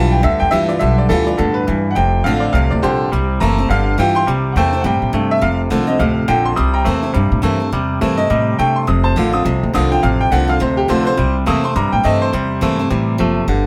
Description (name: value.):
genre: rockabilly.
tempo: 208 BPM.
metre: 4/4.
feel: swing 59% on 8ths.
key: C mixolydian.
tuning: A4 = 442 Hz.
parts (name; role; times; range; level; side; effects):
bright upright piano; melody; 0.0-13.2 s; G4 to Eb6; -21 LUFS; equal; none.
picked steel-string acoustic guitar; accompaniment; 0.0-13.7 s; F2 to F4; -24 LUFS; equal; none.
twangy electric guitar; riff; 0.0-13.7 s; F2 to A3; -22 LUFS; equal; none.
upright bass; bass; 0.0-13.7 s; F1 to C3; -20 LUFS; equal; none.
room: light reverb.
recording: band playing live in one room.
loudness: -16 LUFS.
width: mono.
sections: 0.0-4.3 A section; 4.3-13.7 B section.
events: upright piano solo 4.3-13.7.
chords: 0.0 G7; 2.0 F; 3.1 C7; 3.7 G7; 4.3 C7; 5.4 F7; 6.6 C7; 8.9 F7; 11.2 C7.